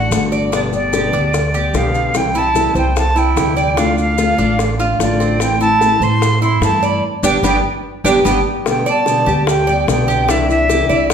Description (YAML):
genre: latin, Cuban son and guajira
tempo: 148 BPM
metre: 4/4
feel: straight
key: unclear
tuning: A4 = 439 Hz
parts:
  - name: bright reedy jazz flute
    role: melody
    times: 0.0-11.1 s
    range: D5 to C6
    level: -18 LUFS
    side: right 1 dB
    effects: none
  - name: nylon-string guitar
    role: accompaniment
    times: 0.0-11.1 s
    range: B2 to G4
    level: -20 LUFS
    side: left 3 dB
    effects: none
  - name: Cuban tres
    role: arpeggios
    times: 0.0-11.1 s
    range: B3 to D5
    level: -20 LUFS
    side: right 3 dB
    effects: none
  - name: upright bass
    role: bass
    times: 0.0-11.1 s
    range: G1 to A2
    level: -20 LUFS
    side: right 1 dB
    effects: none
  - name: bongos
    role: percussion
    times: 0.1-11.1 s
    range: none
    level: -23 LUFS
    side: left 3 dB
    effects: none
  - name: maracas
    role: percussion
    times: 0.1-11.1 s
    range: none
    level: -30 LUFS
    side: left 6 dB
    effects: none
room: wet large studio reverb, RT60 1.2 s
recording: heard from further back in the room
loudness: -13 LUFS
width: side -7 dB against mid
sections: 0.0-8.7 A section; 8.7-11.1 B section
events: band accent 7.0-8.7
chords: 0.0 D; 0.5 G; 2.2 C; 3.8 Dm; 5.4 Am; 7.0 G; 10.3 Cadd9